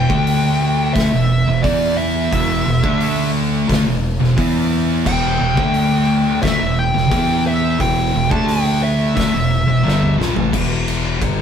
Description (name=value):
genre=stoner and doom metal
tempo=88 BPM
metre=4/4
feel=straight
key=E minor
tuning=A4 = 439 Hz
part: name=fuzz lead guitar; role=melody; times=0.0-10.2 s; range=D5 to A5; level=-20 LUFS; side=left 1 dB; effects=wah, distortion
part: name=thick fuzz guitar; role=riff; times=0.0-11.4 s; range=E2 to E4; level=-21 LUFS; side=left 8 dB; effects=distortion
part: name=thick fuzz guitar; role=riff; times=0.0-10.5 s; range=E2 to E4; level=-19 LUFS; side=right 5 dB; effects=distortion
part: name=modern bright fingered electric bass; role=bass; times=0.0-11.4 s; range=E1 to E2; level=-23 LUFS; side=equal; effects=overdrive
part: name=oversized low-tuned drum kit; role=drums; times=0.1-11.4 s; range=crash cymbal, hi-hat, kick drum, ride cymbal, snare drum, toms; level=-23 LUFS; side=equal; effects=none
room=moderate stone room reverb, RT60 1.2 s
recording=band playing live in one room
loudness=-14 LUFS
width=side -8 dB against mid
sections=0.0-10.5 A section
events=drum fill 9.8-10.5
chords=0.1 D5; 0.9 E5; 2.8 D5; 3.7 E5; 5.6 D5; 6.4 Em; 8.3 D5; 9.2 Em; 10.5 E5